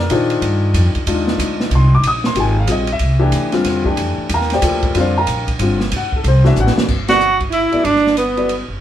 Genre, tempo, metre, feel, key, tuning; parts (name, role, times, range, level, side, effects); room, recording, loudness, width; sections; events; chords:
modal jazz; 186 BPM; 3/4; swing 63% on 8ths; Bb mixolydian; A4 = 444 Hz
warm grand piano; accompaniment; 0.0-8.5 s; D3 to Eb6; -18 LUFS; left 3 dB
upright bass; bass; 0.0-8.8 s; F#1 to Bb2; -17 LUFS; equal
open jazz drum kit; drums; 0.1-8.6 s; crash cymbal, hi-hat, kick drum, ride cymbal, snare drum; -22 LUFS; right 2 dB
warm tenor saxophone; melody; 7.1-8.7 s; B3 to F#4; -15 LUFS; right 2 dB
growling alto saxophone; second line; 7.1-8.7 s; B3 to F#4; -20 LUFS; right 5 dB
moderate studio reverb, RT60 0.5 s; band playing live in one room; -13 LUFS; side -11 dB against mid
0.0-6.9 A section; 6.9-8.8 B section
drum fill 6.6-6.9; band accent 7.0
0.0 Bb9sus4; 3.0 C9sus4; 5.9 D9; 6.9 Gmaj9